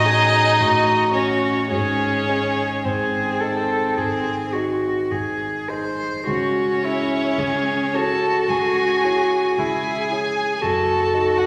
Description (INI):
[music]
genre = classical, slow romantic movement for piano quartet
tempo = 50-59 BPM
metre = 4/4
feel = rubato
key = C# minor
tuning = A4 = 440 Hz
[part]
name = rich violin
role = melody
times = 0.0-11.5 s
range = B#4 to A5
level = -26 LUFS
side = equal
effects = none
[part]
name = rich cello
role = second line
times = 0.0-11.5 s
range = E4 to B#4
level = -24 LUFS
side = equal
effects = none
[part]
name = warm violin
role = second line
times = 0.0-11.5 s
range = B#3 to A4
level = -26 LUFS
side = equal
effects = none
[part]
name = dark grand piano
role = accompaniment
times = 0.0-11.5 s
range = F#1 to D#5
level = -29 LUFS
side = equal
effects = none
[sound]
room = wet scoring stage reverb, RT60 1.5 s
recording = none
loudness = -20 LUFS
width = mono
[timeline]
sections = 0.0-11.5 A section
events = none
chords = 0.0 D#m7b5/A; 1.7 G#; 6.3 C#m; 10.6 F#m6